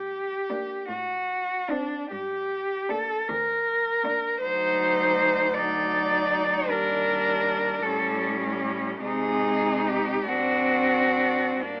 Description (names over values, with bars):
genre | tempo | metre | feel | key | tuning
classical, lyrical piece for cello ensemble | 44-54 BPM (dotted quarters) | 6/8 | rubato | unclear | A4 = 438 Hz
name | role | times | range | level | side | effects
rich cello | melody | 0.0-11.8 s | Bb3 to D5 | -27 LUFS | equal | none
rich cello | bass | 0.0-11.8 s | D2 to C3 | -37 LUFS | equal | none
rich cello | second line | 0.5-11.8 s | C#4 to Eb4 | -31 LUFS | equal | none
rich cello | accompaniment | 0.5-11.8 s | F#3 to C4 | -33 LUFS | equal | none
room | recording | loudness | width
moderate large studio reverb, RT60 1.1 s | AM radio sound | -25 LUFS | mono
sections
0.0-11.8 A section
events
none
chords
0.0 Gm; 0.9 D7/A; 2.1 Gm; 4.4 D7b9; 6.7 Ebmaj7; 7.8 A7; 9.0 Ab/C; 10.3 D7/F#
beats
0.88 | 2.12 3.29 | 4.43 5.55 | 6.70 7.85 | 9.04 10.29 | 11.62